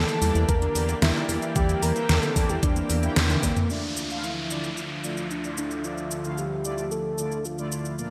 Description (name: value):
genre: synthwave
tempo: 112 BPM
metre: 4/4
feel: straight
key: D minor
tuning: A4 = 440 Hz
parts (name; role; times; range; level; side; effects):
- soft octave-layered synth lead; melody; 0.0-7.9 s; Bb3 to Bb4; -33 LUFS; equal; chorus, delay
- FM electric piano with soft pad layer; second line; 0.0-3.4 s; D5 to Bb5; -39 LUFS; equal; chorus, tremolo, vintage 12-bit sampler grit, digital delay
- lush unison pad; sustained chords; 0.0-8.1 s; D2 to E5; -36 LUFS; equal; chorus, sidechain pumping
- unison pluck; arpeggios; 0.0-3.7 s; D3 to E4; -37 LUFS; equal; none
- chorused synth bass; bass; 0.0-3.5 s; E2; -28 LUFS; equal; tube saturation, sidechain pumping
- pop drum kit; drums; 0.1-8.1 s; cabasa, hi-hat, snare drum, toms; -30 LUFS; equal; overdrive, gated reverb
- analog synth brass; stabs; 0.2-8.1 s; Bb2 to G5; -37 LUFS; equal; chorus
- electronic kick drum; drums; 0.5-3.5 s; none; -28 LUFS; equal; overdrive
- downlifter; sound effects; 3.7-8.0 s; none; -38 LUFS; equal; none
room: moderate lush hall reverb, RT60 1.8 s, digital ambience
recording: bright 1980s-style digital production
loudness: -26 LUFS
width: mono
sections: 0.0-3.7 A section; 3.7-8.1 B section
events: drum fill 3.2-3.7; band accent 3.2; filter sweep on analog synth pad 3.7-8.1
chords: 0.0 Em7b5; 3.7 Dmadd9